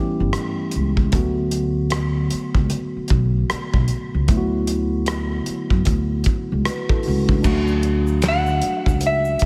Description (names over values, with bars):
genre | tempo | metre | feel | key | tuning
R&B, neo-soul | 76 BPM | 4/4 | swing 60% on 16ths | D major | A4 = 440 Hz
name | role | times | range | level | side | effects
mellow tine electric piano | accompaniment | 0.0-9.5 s | D3 to B4 | -26 LUFS | equal | none
upright bass | bass | 0.2-9.5 s | G1 to F#2 | -24 LUFS | equal | none
warm soul drum kit | drums | 0.3-9.5 s | crash cymbal, finger snaps, hi-hat, kick drum, rim click, snare drum | -24 LUFS | equal | none
egg shaker and finger snaps | percussion | 7.4-9.4 s | none | -42 LUFS | equal | none
clean electric guitar | melody | 8.3-9.4 s | E5 to F#5 | -23 LUFS | equal | slapback echo
room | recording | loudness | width
light reverb, studio reverb | none | -20 LUFS | mono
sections
0.0-7.4 A section; 7.4-9.5 B section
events
none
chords
0.0 A7; 1.1 D6; 7.4 Dmaj7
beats
0.34 | 1.13 1.92 2.71 3.50 | 4.29 5.08 5.87 6.66 | 7.45 8.23 9.02